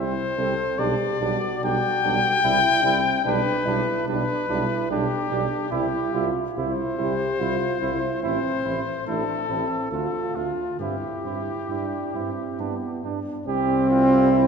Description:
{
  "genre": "classical, brass quintet",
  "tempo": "67-75 BPM",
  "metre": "3/4",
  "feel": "rubato",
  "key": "C major from 3.2 s",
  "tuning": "A4 = 445 Hz",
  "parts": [
    { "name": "warm trumpet", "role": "melody", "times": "0.0-14.5 s", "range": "E4 to G5", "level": "-25 LUFS", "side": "left 4 dB", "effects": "none" },
    { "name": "warm flugelhorn", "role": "second line", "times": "0.0-14.5 s", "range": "C4 to G4", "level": "-30 LUFS", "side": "right 7 dB", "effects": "none" },
    { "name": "clear French horn", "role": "accompaniment", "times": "0.0-14.5 s", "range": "C4 to A4", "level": "-26 LUFS", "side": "equal", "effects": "none" },
    { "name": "warm trombone", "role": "accompaniment", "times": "0.0-14.5 s", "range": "G3 to D4", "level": "-33 LUFS", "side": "right 3 dB", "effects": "none" },
    { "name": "mellow tuba", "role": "bass", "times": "0.0-14.5 s", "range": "A1 to G2", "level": "-30 LUFS", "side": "right 2 dB", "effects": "none" }
  ],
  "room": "wet church reverb, RT60 2.7 s",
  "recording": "minimal, uncompressed stereo recording",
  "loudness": "-21 LUFS",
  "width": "side -6 dB against mid",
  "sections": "0.0-13.5 A section; 13.5-14.5 B section",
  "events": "none",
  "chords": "0.0 C; 0.8 G/B; 2.4 C; 3.2 G/B; 5.7 C; 8.2 Am; 9.9 Dm; 10.8 C/G; 12.6 G; 13.5 C"
}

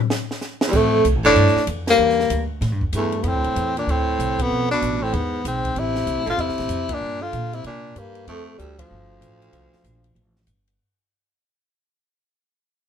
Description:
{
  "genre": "jazz, small-group swing and bop",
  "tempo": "191 BPM",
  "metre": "4/4",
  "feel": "swing 64% on 8ths",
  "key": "F major",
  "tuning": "A4 = 439 Hz",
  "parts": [
    { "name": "compact cocktail drum kit", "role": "drums", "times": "0.1-10.7 s", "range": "crash cymbal, hi-hat, kick drum, ride cymbal, snare drum", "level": "-27 LUFS", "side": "equal", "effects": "none" },
    { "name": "warm tenor saxophone", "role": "melody", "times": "0.7-10.5 s", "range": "F3 to F4", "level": "-21 LUFS", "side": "left 3 dB", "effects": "none" },
    { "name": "clear baritone saxophone", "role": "second line", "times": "0.7-10.5 s", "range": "D2 to D3", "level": "-25 LUFS", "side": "right 6 dB", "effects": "none" },
    { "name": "upright bass", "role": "bass", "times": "0.7-10.8 s", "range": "F1 to C3", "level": "-25 LUFS", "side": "equal", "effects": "none" }
  ],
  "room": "moderate studio reverb, RT60 0.7 s",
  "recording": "minimal, uncompressed stereo recording",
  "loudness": "-18 LUFS",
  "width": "side -8 dB against mid",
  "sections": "0.7-10.8 A section",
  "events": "fade-out 0.7-10.8; band accent 1.8, 4.3, 6.9, 8.7",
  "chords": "0.0 N.C.; 0.7 F69; 2.0 Em7b5; 2.6 A5; 3.2 D7(no3); 4.5 Bm7b5; 5.1 E; 5.8 Am; 7.0 Gm7; 7.6 Csus2; 8.3 F69"
}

